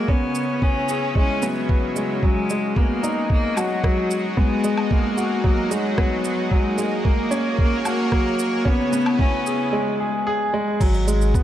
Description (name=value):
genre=piano and strings electronica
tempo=112 BPM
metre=4/4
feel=straight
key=G# minor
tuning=A4 = 439 Hz
part: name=rich cello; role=melody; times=0.0-9.7 s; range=F#3 to C#4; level=-24 LUFS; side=left 1 dB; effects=digital delay
part: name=lush unison pad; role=sustained chords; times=0.0-11.4 s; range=C#3 to C#5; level=-29 LUFS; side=equal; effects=chorus
part: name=warm grand piano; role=riff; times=0.0-11.4 s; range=F#3 to B4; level=-24 LUFS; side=equal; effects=digital delay
part: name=electronic kick drum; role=drums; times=0.1-11.4 s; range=none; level=-19 LUFS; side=equal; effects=none
part: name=deep house drum kit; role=drums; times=0.3-11.4 s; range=crash cymbal, rim click, shaker, woodblock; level=-31 LUFS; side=equal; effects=overdrive
part: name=round analog bass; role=bass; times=10.8-11.4 s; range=G#1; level=-20 LUFS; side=equal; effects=sidechain pumping
room=moderate concert hall reverb, RT60 2.2 s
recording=none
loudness=-18 LUFS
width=side -12 dB against mid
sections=0.0-10.8 A section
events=build-up 0.0-10.8; break 9.7-10.8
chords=0.1 C#m7; 2.2 G#m7; 6.5 F#add9; 8.7 C#m7; 10.8 G#m7